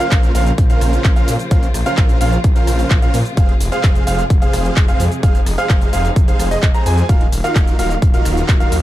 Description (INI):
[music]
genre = EDM, festival progressive house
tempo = 129 BPM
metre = 4/4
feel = straight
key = Bb minor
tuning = A4 = 439 Hz
[part]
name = rich symphonic string section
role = sustained chords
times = 0.0-8.8 s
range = C3 to F5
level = -26 LUFS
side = left 1 dB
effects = sidechain pumping
[part]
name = warm grand piano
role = arpeggios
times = 0.0-8.8 s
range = Eb5 to Bb5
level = -23 LUFS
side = right 2 dB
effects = sidechain pumping, ping-pong delay
[part]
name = dense compressed supersaw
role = riff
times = 0.0-8.8 s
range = Db4 to Bb5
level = -23 LUFS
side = right 1 dB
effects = sidechain pumping, ping-pong delay
[part]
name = big-room dance drum kit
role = drums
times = 0.0-8.8 s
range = handclaps, hi-hat, rim click, shaker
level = -25 LUFS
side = equal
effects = none
[part]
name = detuned saw bass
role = bass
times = 0.1-8.8 s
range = Eb1 to Bb2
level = -19 LUFS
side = equal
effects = sidechain pumping
[part]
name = electronic kick drum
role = drums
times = 0.1-8.6 s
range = none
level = -13 LUFS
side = equal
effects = overdrive
[sound]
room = little or no reverb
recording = dark, warm production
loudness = -12 LUFS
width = side -14 dB against mid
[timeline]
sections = 0.0-8.8 A section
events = none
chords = 0.0 Bbmadd9; 3.4 Fm; 7.1 Ebmadd9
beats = 0.12 0.58 1.05 | 1.51 1.98 2.44 2.91 | 3.37 3.84 4.30 4.77 | 5.23 5.70 6.16 6.63 | 7.09 7.56 8.02 8.49